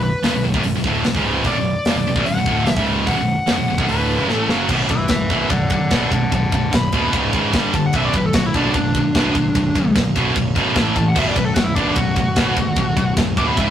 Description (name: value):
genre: heavy metal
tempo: 148 BPM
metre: 4/4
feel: straight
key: B minor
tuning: A4 = 440 Hz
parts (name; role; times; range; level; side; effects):
- high-gain lead guitar; melody; 0.0-13.7 s; D4 to D6; -22 LUFS; left 1 dB; distortion
- high-gain distorted guitar; riff; 0.0-13.7 s; B1 to A3; -20 LUFS; right 4 dB; distortion
- scooped high-gain guitar; riff; 0.0-13.7 s; B1 to A3; -24 LUFS; left 7 dB; distortion
- fuzz picked electric bass; bass; 0.0-13.7 s; B0 to A1; -26 LUFS; equal; overdrive
- tight metal drum kit; drums; 0.2-13.7 s; crash cymbal, hi-hat, kick drum, ride cymbal, snare drum; -22 LUFS; equal; none
room: moderate studio reverb, RT60 0.5 s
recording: rough rehearsal-room recording, tube saturation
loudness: -15 LUFS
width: side -10 dB against mid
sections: 0.0-4.7 A section; 4.7-13.7 B section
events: drum fill 4.3-4.7; lead electric guitar solo 4.7-13.7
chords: 0.0 Bm; 7.1 C#5; 7.5 G5; 7.9 Bm; 10.8 A5; 11.2 B5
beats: 0.24 0.65 1.05 | 1.46 1.86 2.27 2.67 | 3.08 3.49 3.89 4.30 | 4.70 5.11 5.51 5.92 | 6.32 6.73 7.13 7.54 | 7.94 8.35 8.75 9.15 | 9.56 9.96 10.37 10.77 | 11.17 11.57 11.97 12.37 | 12.77 13.17 13.57